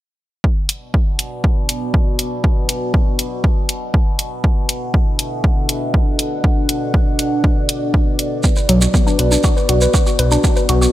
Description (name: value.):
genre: melodic techno.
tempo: 120 BPM.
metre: 4/4.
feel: straight.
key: B minor.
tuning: A4 = 440 Hz.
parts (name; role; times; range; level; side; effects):
dark analog pad; sustained chords; 1.2-10.9 s; B3 to F#5; -22 LUFS; equal; chorus, phaser, sidechain pumping.
overtone-sweeping drone; drone; 1.1-10.9 s; B2; -27 LUFS; left 1 dB; chorus, built-in reverb, sidechain pumping.
electronic kick drum; drums; 0.4-10.5 s; none; -15 LUFS; equal; overdrive.
electronic hi-hat; drums; 0.7-10.8 s; none; -18 LUFS; equal; sidechain pumping on hats.
woody wave-folded pluck; arpeggios; 8.4-10.9 s; F#3 to B4; -19 LUFS; left 1 dB; chorus, cassette tape, sidechain pumping, digital delay.
shekere; percussion; 8.4-10.9 s; none; -24 LUFS; right 3 dB; none.
fat analog bass; bass; 8.7-10.9 s; B1; -15 LUFS; equal; sidechain pumping.
room: light reverb.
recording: bright 1980s-style digital production.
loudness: -14 LUFS.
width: side -14 dB against mid.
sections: 0.4-10.9 A section.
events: none.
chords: 0.4 Bm; 4.4 D; 8.4 Bm.